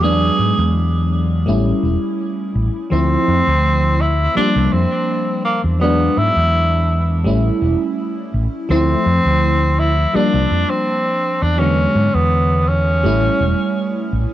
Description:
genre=vaporwave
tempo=83 BPM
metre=4/4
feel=straight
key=unclear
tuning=A4 = 440 Hz
part: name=warm tenor saxophone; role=melody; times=0.0-14.1 s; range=Bb3 to G#4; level=-19 LUFS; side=equal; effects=tape echo
part: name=FM electric piano with soft pad layer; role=accompaniment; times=0.0-14.3 s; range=D3 to E4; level=-19 LUFS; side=equal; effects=phaser, lush chorus
part: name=mellow fretless electric bass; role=bass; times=0.0-14.2 s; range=E1 to G#2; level=-17 LUFS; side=equal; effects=tube saturation
room=little or no reverb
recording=dry, gritty hardware recording, transformer saturation, cassette tape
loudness=-14 LUFS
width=side -13 dB against mid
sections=0.0-14.3 A section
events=none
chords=0.0 E7; 1.5 A7; 2.9 Dm9; 4.4 C7sus4; 5.8 E7; 7.3 A7; 8.7 Dm9; 10.1 C7sus4; 11.6 E7; 13.0 A7

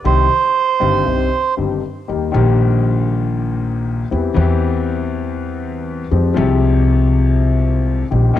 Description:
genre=tango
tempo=119 BPM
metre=4/4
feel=rubato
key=Eb major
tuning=A4 = 437 Hz
part: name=warm concert grand piano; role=accompaniment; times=0.0-8.4 s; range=G1 to G4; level=-18 LUFS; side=left 5 dB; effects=cassette tape
part: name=bandoneon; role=melody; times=0.1-1.5 s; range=C5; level=-16 LUFS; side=right 7 dB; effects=cassette tape
part: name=upright bass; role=bass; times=0.1-8.4 s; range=G1 to F2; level=-17 LUFS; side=right 1 dB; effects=tube saturation
room=light reverb, small room ambience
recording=home recording on cassette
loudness=-14 LUFS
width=side -12 dB against mid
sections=0.0-2.1 A section; 2.1-8.4 B section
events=none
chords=0.1 Cm; 2.1 Eb; 4.1 C/E; 6.1 Fmadd9

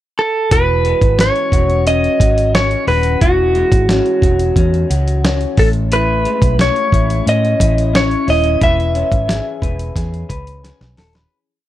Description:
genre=indie pop, bedroom pop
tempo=89 BPM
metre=4/4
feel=straight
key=E major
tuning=A4 = 441 Hz
part: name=direct-recorded clean electric guitar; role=melody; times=0.2-10.6 s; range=F#4 to E5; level=-16 LUFS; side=right 1 dB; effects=lush chorus
part: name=electric guitar through a small old amp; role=accompaniment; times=0.5-11.7 s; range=A2 to B4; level=-21 LUFS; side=left 5 dB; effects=lush chorus, warbly pitch drift
part: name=vintage muted fingered electric bass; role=bass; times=0.5-11.2 s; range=D#1 to A2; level=-17 LUFS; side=equal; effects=none
part: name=dusty soul sampler-style drum kit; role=drums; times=0.5-11.3 s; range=hi-hat, kick drum, snare drum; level=-16 LUFS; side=equal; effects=none
room=little or no reverb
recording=dry, close 1970s-style studio recording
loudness=-12 LUFS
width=side -13 dB against mid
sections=0.0-0.5 pickup bar; 0.5-11.3 A section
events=fade-out 8.6-11.3; drum fill 10.6-11.3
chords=0.0 N.C.; 0.5 E69; 5.6 Amaj7

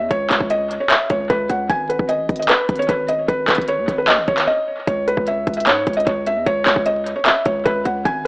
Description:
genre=hip hop, trap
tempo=151 BPM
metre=4/4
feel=half-time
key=C# minor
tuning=A4 = 440 Hz
part: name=felt-muted upright piano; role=melody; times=0.0-8.3 s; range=B4 to G#5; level=-18 LUFS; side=equal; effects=tape echo
part: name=hard-hitting 808-style bass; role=bass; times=0.0-8.3 s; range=G#1 to G#2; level=-25 LUFS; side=equal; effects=none
part: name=organic electronic drum kit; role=drums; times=0.1-8.1 s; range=handclaps, hi-hat, kick drum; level=-19 LUFS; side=equal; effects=overdrive, tape echo
room=light reverb, digital ambience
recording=echo-heavy mix, vinyl crackle, AM radio sound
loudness=-16 LUFS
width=side -26 dB against mid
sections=0.0-4.9 A section; 4.9-8.3 B section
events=break 4.5-4.9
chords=0.0 N.C.; 1.7 G#5; 4.9 C#m

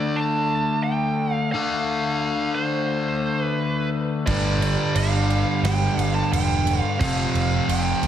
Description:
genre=hard rock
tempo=88 BPM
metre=4/4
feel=straight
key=D minor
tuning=A4 = 445 Hz
part: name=high-gain lead guitar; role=melody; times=0.0-8.1 s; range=C5 to A5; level=-26 LUFS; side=right 2 dB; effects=distortion
part: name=cranked stack guitar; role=riff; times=0.0-8.1 s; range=F2 to D4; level=-24 LUFS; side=left 4 dB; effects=overdrive
part: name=crunchy overdriven guitar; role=riff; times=4.3-8.1 s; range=F2 to G3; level=-28 LUFS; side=right 10 dB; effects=spring reverb
part: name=sludgy distorted guitar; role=riff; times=4.3-8.1 s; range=F2 to G3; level=-31 LUFS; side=right 3 dB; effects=overdrive, slapback echo
part: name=picked electric bass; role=bass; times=4.3-8.1 s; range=E1 to D2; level=-24 LUFS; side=right 1 dB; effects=none
part: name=big rock drum kit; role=drums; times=4.3-8.1 s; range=crash cymbal, kick drum, snare drum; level=-28 LUFS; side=right 2 dB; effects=none
room=moderate lush hall reverb, RT60 2.9 s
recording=big arena sound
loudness=-20 LUFS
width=side -10 dB against mid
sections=0.0-8.1 A section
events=none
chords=0.0 Dm; 4.3 G5; 7.0 F5

